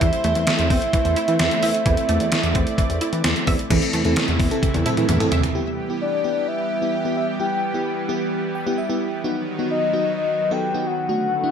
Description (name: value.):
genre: synth-pop.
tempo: 130 BPM.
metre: 4/4.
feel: straight.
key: E minor.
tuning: A4 = 440 Hz.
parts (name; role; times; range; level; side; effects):
soft octave-layered synth lead; melody; 0.0-3.2, 6.0-11.5 s; D5 to G5; -23 LUFS; left 1 dB; chorus, tremolo, ping-pong delay.
lush unison pad; sustained chords; 0.0-11.5 s; C3 to D5; -26 LUFS; right 1 dB; chorus.
wide unison pluck; arpeggios; 0.0-5.5 s; E3 to E5; -28 LUFS; right 2 dB; wide subtle chorus, ping-pong delay.
chorused synth bass; bass; 0.0-5.4 s; E2 to E3; -23 LUFS; equal; none.
gated 80s digital drum machine; drums; 0.0-5.5 s; crash cymbal, hi-hat, kick drum, snare drum, toms; -21 LUFS; equal; gated reverb, gated reverb snare, overdrive.
FM electric piano with soft pad layer; accompaniment; 3.7-11.5 s; A3 to G5; -25 LUFS; equal; chorus.
room: wet plate reverb, RT60 0.9 s, digital ambience.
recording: bright 1980s-style digital production.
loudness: -18 LUFS.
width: side -7 dB against mid.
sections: 0.0-3.7 A section; 3.7-5.6 B section; 5.6-11.5 C section.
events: drum fill 4.6-5.6; FM electric piano fill 8.3-9.2.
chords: 0.0 Am/E; 5.6 Em; 9.2 B.